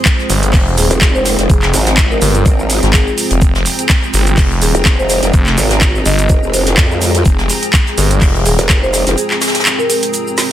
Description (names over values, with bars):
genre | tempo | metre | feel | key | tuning
bass house | 125 BPM | 4/4 | swing 55% on 16ths | F minor | A4 = 440 Hz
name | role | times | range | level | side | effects
dark analog pad | sustained chords | 0.0-10.5 s | Ab3 to C5 | -24 LUFS | left 1 dB | chorus, sidechain pumping
granular cloud pad | texture | 0.0-10.5 s | C4 to C6 | -22 LUFS | right 1 dB | built-in reverb, sidechain pumping
electronic kick drum | drums | 0.1-8.8 s | none | -12 LUFS | equal | overdrive
garage drum kit | drums | 0.1-10.5 s | handclaps, hi-hat, shaker, snare drum | -16 LUFS | right 1 dB | overdrive
soft brush drum kit | drums | 0.1-10.5 s | hi-hat, shaker, snare drum | -23 LUFS | equal | sidechain pumping on hats, high-pass filter on hats, high-pass filter on snare, sidechain pumping on perc, high-pass filter on perc, high-pass filter on room
phased detuned saw bass | bass | 0.3-8.6 s | Eb1 to Ab1 | -14 LUFS | equal | phaser, tube saturation, sidechain pumping
marimba with soft mallets | melody | 0.8-10.0 s | Ab4 to Eb5 | -20 LUFS | equal | digital delay
growl bass | bass | 0.9-9.2 s | F1 to F2 | -15 LUFS | equal | chorus, sidechain pumping
room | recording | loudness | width
small room ambience | dense, heavily limited modern master | -10 LUFS | side -12 dB against mid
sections
0.0-10.5 A section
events
kick drops out 9.2-10.5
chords
0.0 Fm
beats
0.06 0.54 1.02 | 1.50 1.98 2.46 2.94 | 3.42 3.90 4.38 4.86 | 5.34 5.82 6.30 6.78 | 7.26 7.74 8.22 8.70 | 9.18 9.66 10.14